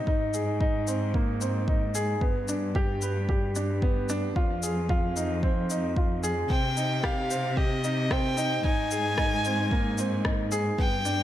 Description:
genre	piano and strings electronica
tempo	112 BPM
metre	4/4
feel	straight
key	unclear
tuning	A4 = 440 Hz
part	warm upright piano	riff	0.0-11.2 s	Bb3 to C5	-30 LUFS	right 1 dB	ping-pong delay
part	rich studio cello section	bass	0.0-11.2 s	F2 to C3	-30 LUFS	left 1 dB	sidechain pumping
part	electronic kick drum	drums	0.1-10.9 s	none	-27 LUFS	equal	none
part	electronic shaker and rim click	drums	0.3-11.2 s	none	-35 LUFS	left 2 dB	none
part	dark violin	melody	6.5-11.2 s	Eb5 to Ab5	-30 LUFS	left 1 dB	none
room	light reverb, studio reverb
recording	none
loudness	-24 LUFS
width	side -12 dB against mid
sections	0.0-11.2 A section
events	none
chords	0.1 Abadd9; 2.2 G; 4.4 Fm7; 6.5 Cm; 8.6 Abadd9

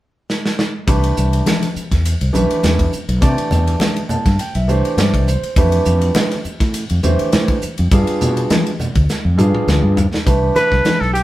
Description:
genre	electric jazz fusion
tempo	102 BPM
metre	4/4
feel	swing 54% on 16ths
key	C major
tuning	A4 = 439 Hz
part	modern studio drum kit	drums	0.3-11.2 s	hi-hat, kick drum, ride cymbal, snare drum, toms	-19 LUFS	equal	none
part	warm grand piano	accompaniment	0.9-11.0 s	E3 to A5	-19 LUFS	right 2 dB	none
part	fretless electric bass	bass	0.9-11.2 s	B1 to C3	-16 LUFS	equal	none
part	congas	percussion	0.9-11.0 s	none	-24 LUFS	left 2 dB	none
part	trumpet with straight mute	melody	10.6-11.2 s	G4 to B4	-17 LUFS	left 1 dB	none
part	hollow-body jazz guitar	second line	10.6-11.2 s	G4 to B4	-20 LUFS	right 1 dB	none
room	moderate studio reverb, RT60 0.8 s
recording	band playing live in one room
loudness	-14 LUFS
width	side -15 dB against mid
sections	0.9-10.3 A section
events	drum fill 0.3-0.9, 9.1-10.3; grand piano fill 3.8-5.6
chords	0.0 N.C.; 0.9 Cmaj9; 5.6 Fmaj9; 7.9 G7b9; 10.3 Cmaj9

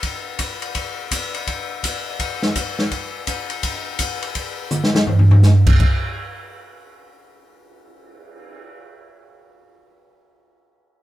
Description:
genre	jazz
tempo	167 BPM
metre	4/4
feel	swing 64% on 8ths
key	none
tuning	none
part	open jazz drum kit	drums	0.0-8.6 s	crash cymbal, cymbal swell, hi-hat, kick drum, ride cymbal, snare drum, toms	-17 LUFS	equal	none
room	light reverb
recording	band playing live in one room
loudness	-17 LUFS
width	side -14 dB against mid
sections	0.0-5.8 A section; 5.8-8.7 B section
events	drum fill 4.7-5.4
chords	none

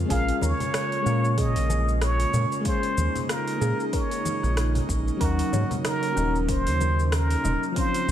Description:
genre	sunset chillout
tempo	94 BPM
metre	4/4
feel	swing 57% on 16ths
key	Bb minor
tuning	A4 = 441 Hz
part	mellow FM electric piano	accompaniment	0.0-8.1 s	F3 to Bb4	-30 LUFS	left 3 dB	chorus, auto-pan, tape echo
part	airy breathy pad	sustained chords	0.0-8.1 s	Db3 to C5	-32 LUFS	right 2 dB	chorus, vintage 12-bit sampler grit
part	round analog bass	bass	0.0-8.1 s	Eb1 to Bb2	-24 LUFS	equal	none
part	trumpet with plunger mute	melody	0.1-8.1 s	Gb4 to F5	-28 LUFS	right 1 dB	tape echo
part	soft round pluck	arpeggios	0.1-7.7 s	Ab4 to Gb5	-36 LUFS	right 2 dB	analog chorus, tape echo
part	deep house drum kit	drums	0.1-8.1 s	hi-hat, rim click, shaker	-34 LUFS	equal	overdrive, small room reverb
part	electronic kick drum	drums	0.1-7.9 s	none	-28 LUFS	equal	overdrive, small room reverb
part	congas	percussion	0.4-8.1 s	none	-34 LUFS	left 3 dB	none
room	moderate plate reverb, RT60 2.0 s, digital ambience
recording	dreamy mix soaked in reverb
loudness	-22 LUFS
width	side -10 dB against mid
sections	0.0-8.1 A section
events	none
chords	0.1 Bbm7; 5.2 Ebm7

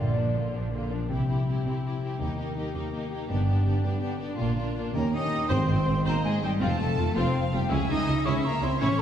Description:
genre	cinematic, heroic adventure film score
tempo	109 BPM (dotted quarters)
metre	6/8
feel	straight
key	Ab major from 5.5 s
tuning	A4 = 439 Hz
part	warm symphonic violin section	melody	0.0-9.0 s	D4 to Eb5	-36 LUFS	left 4 dB	none
part	mellow hollow silver concert flute	second line	0.0-0.5, 5.0-9.0 s	D5 to Eb6	-32 LUFS	left 1 dB	none
part	rich symphonic violin section	second line	0.0-9.0 s	Bb3 to A5	-37 LUFS	equal	none
part	warm symphonic viola section	accompaniment	0.0-9.0 s	D3 to C5	-35 LUFS	right 1 dB	none
part	concert harp	arpeggios	0.0-9.0 s	F2 to Ab5	-31 LUFS	left 3 dB	none
part	rich symphonic cello section	bass	0.0-9.0 s	Eb2 to Eb4	-32 LUFS	right 1 dB	none
part	rich symphonic double bass section	bass	0.0-9.0 s	F1 to Eb2	-31 LUFS	right 2 dB	none
part	timpani	percussion	1.1-1.6, 5.5-6.0 s	Ab2 to C3	-31 LUFS	right 1 dB	none
part	dark tuba	bass	5.5-9.0 s	F1 to Db2	-31 LUFS	right 2 dB	none
room	wet scoring stage reverb, RT60 1.7 s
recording	heard from further back in the room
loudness	-24 LUFS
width	side -9 dB against mid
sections	0.0-1.1 A section; 1.1-5.5 B section; 5.5-9.0 C section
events	none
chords	0.0 Bb; 1.1 C; 2.2 Eb; 3.3 G; 4.4 Bb; 5.0 Eb7; 5.5 Ab; 6.6 F; 7.7 Dbm

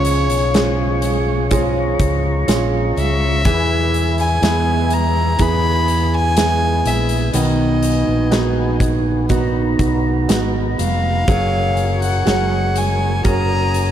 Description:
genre	pop ballad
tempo	62 BPM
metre	4/4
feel	straight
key	F# major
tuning	A4 = 440 Hz
part	warm violin	melody	0.0-13.9 s	C#5 to B5	-21 LUFS	left 1 dB	none
part	clear baby grand piano	accompaniment	0.0-13.9 s	C#3 to A#4	-23 LUFS	right 7 dB	none
part	tonewheel organ	sustained chords	0.0-13.9 s	E#4 to D#6	-26 LUFS	left 1 dB	overdrive, slow rotary speaker
part	fingerpicked steel-string acoustic guitar	arpeggios	0.0-13.9 s	B2 to G#4	-24 LUFS	left 2 dB	none
part	fingered electric bass	bass	0.0-13.9 s	E#1 to E2	-19 LUFS	equal	none
part	huge arena drum kit	drums	0.0-13.9 s	hi-hat, kick drum, snare drum	-22 LUFS	equal	none
part	downlifter	sound effects	0.0-3.5 s	none	barely audible	none	none
room	small room ambience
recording	none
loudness	-14 LUFS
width	side -10 dB against mid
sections	0.0-13.9 A section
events	none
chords	0.0 C#; 3.5 E; 7.3 B; 11.3 F#add9

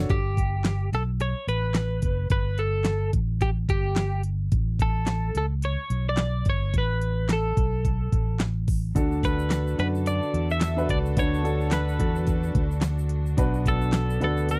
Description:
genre	piano-driven pop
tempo	108 BPM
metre	4/4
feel	swing 56% on 16ths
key	unclear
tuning	A4 = 440 Hz
part	clear baby grand piano	accompaniment	0.0-0.1, 8.9-14.6 s	B2 to D5	-32 LUFS	equal	none
part	warm studio string section	sustained chords	0.0-0.1, 9.0-14.6 s	D3 to A4	-39 LUFS	equal	none
part	fingered electric bass	bass	0.0-14.6 s	F#1 to F#2	-28 LUFS	equal	none
part	twelve-string electric guitar	melody	0.1-14.6 s	G4 to E5	-32 LUFS	equal	slapback echo
part	pop drum kit	drums	0.1-14.6 s	handclaps, hi-hat, kick drum, snare drum	-28 LUFS	equal	none
part	egg shaker	percussion	9.0-14.6 s	none	-54 LUFS	equal	none
room	little or no reverb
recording	dry, close 1970s-style studio recording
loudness	-25 LUFS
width	mono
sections	0.1-14.6 A section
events	none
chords	0.1 G; 4.5 N.C.; 9.0 D; 13.4 Bm

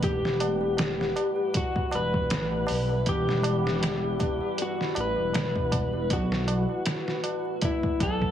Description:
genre	trip hop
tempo	79 BPM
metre	4/4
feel	swing 56% on 16ths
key	E minor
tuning	A4 = 440 Hz
part	electric slide guitar	melody	0.0-8.3 s	E4 to B4	-29 LUFS	left 2 dB	vintage 12-bit sampler grit, tape echo
part	deep dark ambient pad	sustained chords	0.0-8.3 s	G3 to F#5	-33 LUFS	left 1 dB	chorus, built-in reverb, vintage 12-bit sampler grit
part	dark detuned saw bass	bass	0.0-8.3 s	E1 to B1	-29 LUFS	right 1 dB	none
part	trip hop sampler-style drum kit	drums	0.0-8.3 s	hi-hat, kick drum, snare drum	-29 LUFS	equal	none
part	tabla	percussion	0.0-8.3 s	none	-38 LUFS	right 2 dB	none
room	light reverb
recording	heavily compressed radio sound, small room ambience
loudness	-24 LUFS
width	side -10 dB against mid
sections	0.0-8.3 A section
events	none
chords	0.0 Emadd9; 6.1 B7sus4

